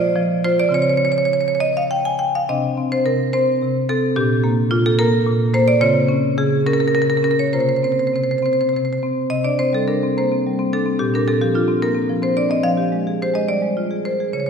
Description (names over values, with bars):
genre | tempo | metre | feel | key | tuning
classical, contemporary piece for solo marimba | 67-74 BPM (dotted quarters) | 6/8 | rubato | unclear | A4 = 440 Hz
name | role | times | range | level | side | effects
marimba with medium hard mallets | solo | 0.0-14.5 s | Bb2 to Ab5 | -16 LUFS | equal | none
room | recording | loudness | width
wet scoring stage reverb, RT60 2.1 s | heard from further back in the room | -16 LUFS | side -6 dB against mid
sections
0.0-9.3 A section; 9.3-14.5 B section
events
none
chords
0.0 Fmadd9; 0.7 Dbmaj7; 2.5 Csus2; 4.2 Bbadd9; 5.8 Dbmaj7; 7.5 C7sus4; 9.3 Csus2; 11.0 Bbadd9; 12.6 Fmadd9